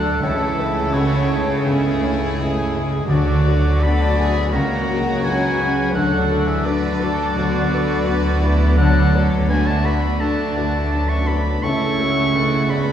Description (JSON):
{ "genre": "cinematic, emotional film score for orchestra", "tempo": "84 BPM", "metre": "4/4", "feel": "rubato", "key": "D lydian", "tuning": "A4 = 440 Hz", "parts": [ { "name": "warm symphonic violin section", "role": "melody", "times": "0.0-12.9 s", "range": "F#4 to B4", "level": "-29 LUFS", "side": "left 3 dB", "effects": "none" }, { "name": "concert flute", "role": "second line", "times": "0.0-12.9 s", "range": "E4 to E5", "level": "-29 LUFS", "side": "left 3 dB", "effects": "none" }, { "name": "mellow clarinet", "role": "second line", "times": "0.0-12.9 s", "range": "F#4 to D5", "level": "-31 LUFS", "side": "left 1 dB", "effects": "none" }, { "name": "warm oboe", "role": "second line", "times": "0.0-12.9 s", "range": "C#5 to C#6", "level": "-25 LUFS", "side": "equal", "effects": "none" }, { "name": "warm symphonic violin section", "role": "second line", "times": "0.0-12.9 s", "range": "D4 to A4", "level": "-30 LUFS", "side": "left 2 dB", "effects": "none" }, { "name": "dark symphonic viola section", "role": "accompaniment", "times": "0.0-12.9 s", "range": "F#3 to C#4", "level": "-29 LUFS", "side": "right 2 dB", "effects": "none" }, { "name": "felt-muted upright piano", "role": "accompaniment", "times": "0.0-12.9 s", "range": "C#2 to C#5", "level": "-27 LUFS", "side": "left 2 dB", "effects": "none" }, { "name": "dark French horn section", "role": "sustained chords", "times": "0.0-12.9 s", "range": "C#3 to C#4", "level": "-27 LUFS", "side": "equal", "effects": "none" }, { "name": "concert harp", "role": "arpeggios", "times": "0.0-12.9 s", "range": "C#3 to A#5", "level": "-28 LUFS", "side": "left 3 dB", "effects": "none" }, { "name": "dark symphonic double bass section", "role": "bass", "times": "0.0-12.9 s", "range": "C#2 to D2", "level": "-21 LUFS", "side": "right 1 dB", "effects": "none" }, { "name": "warm studio cello section", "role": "bass", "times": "0.0-12.9 s", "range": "C#3 to D3", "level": "-26 LUFS", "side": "right 2 dB", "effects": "none" }, { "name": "timpani", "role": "percussion", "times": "3.1-9.8 s", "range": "D3", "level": "-26 LUFS", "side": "equal", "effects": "none" } ], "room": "wet recital hall reverb, RT60 1.4 s", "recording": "heard from further back in the room", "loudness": "-16 LUFS", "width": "side -9 dB against mid", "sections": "0.0-12.9 A section", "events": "none", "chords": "0.2 A/C#; 3.1 D; 4.5 F#/C#; 5.9 D; 7.4 Bm/D; 8.8 D; 11.6 A/C#" }